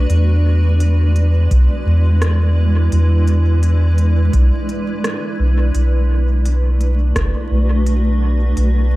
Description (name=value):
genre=ambient dub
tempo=85 BPM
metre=4/4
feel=swing 56% on 16ths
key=B dorian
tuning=A4 = 440 Hz
part: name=granular cloud pad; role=sustained chords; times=0.0-9.0 s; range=G#3 to D5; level=-22 LUFS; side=right 1 dB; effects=built-in reverb
part: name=soft dub sub bass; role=bass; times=0.0-9.0 s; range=F#1 to E2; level=-13 LUFS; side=equal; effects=none
part: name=organic electronic drum kit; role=drums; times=0.1-8.7 s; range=hi-hat, rim click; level=-28 LUFS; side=equal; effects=overdrive, dub echo
part: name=electronic kick drum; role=drums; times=1.5-7.3 s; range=none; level=-19 LUFS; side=equal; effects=none
room=little or no reverb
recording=vinyl crackle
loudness=-13 LUFS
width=side -18 dB against mid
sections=0.0-5.7 A section; 5.7-9.0 A section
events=none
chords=0.1 E7; 5.7 Bm7